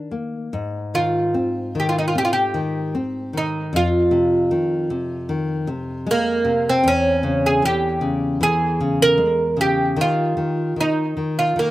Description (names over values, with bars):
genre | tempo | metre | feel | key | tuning
fado | 76 BPM | 4/4 | rubato | Ab major | A4 = 440 Hz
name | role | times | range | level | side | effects
nylon-string guitar | accompaniment | 0.0-11.7 s | Fb2 to C4 | -23 LUFS | left 2 dB | none
oud | melody | 0.9-11.7 s | Bb3 to Bb4 | -19 LUFS | right 1 dB | none
room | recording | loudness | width
light reverb | recorded outdoors, with no room sound | -18 LUFS | side -16 dB against mid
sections
0.5-11.7 A section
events
none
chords
0.0 Eb5; 0.5 Abmaj7; 3.7 Fm7; 6.8 Dbm/Fb; 10.0 N.C.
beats
| 0.53 1.34 2.15 2.95 | 3.74 4.52 5.29 6.08 | 6.85 7.62 8.41 9.19 | 9.98 10.77 11.56